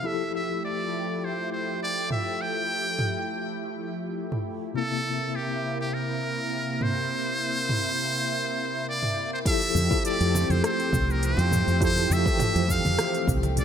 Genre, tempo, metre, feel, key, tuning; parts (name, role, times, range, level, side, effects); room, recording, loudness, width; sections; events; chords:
sunset chillout; 102 BPM; 4/4; swing 54% on 16ths; F major; A4 = 441 Hz
trumpet with metal mute; melody; 0.0-13.6 s; G4 to G5; -28 LUFS; equal; ping-pong delay
tine electric piano; accompaniment; 0.0-13.6 s; C3 to A4; -32 LUFS; moving between left 6 dB and right 5 dB; overdrive, fast stereo tremolo, auto-pan, low-pass filter
lush unison pad; sustained chords; 0.0-13.6 s; C3 to G4; -32 LUFS; equal; chorus, phaser
deep house drum kit; drums; 2.1-13.6 s; cabasa, crash cymbal, hi-hat, rim click, toms; -30 LUFS; right 1 dB; studio ambience
electronic kick drum; drums; 9.5-13.4 s; -27 LUFS; equal; overdrive, studio ambience
woody fretless electric bass; bass; 9.7-13.6 s; C2 to F2; -24 LUFS; equal
congas; percussion; 9.8-13.6 s; -32 LUFS; right 3 dB
light reverb, digital ambience; -24 LUFS; side -8 dB against mid
0.0-9.5 A section; 9.5-13.6 B section
filter sweep on tine electric piano 0.0-9.5
0.0 Fmaj9; 4.8 C7; 9.5 Fmaj9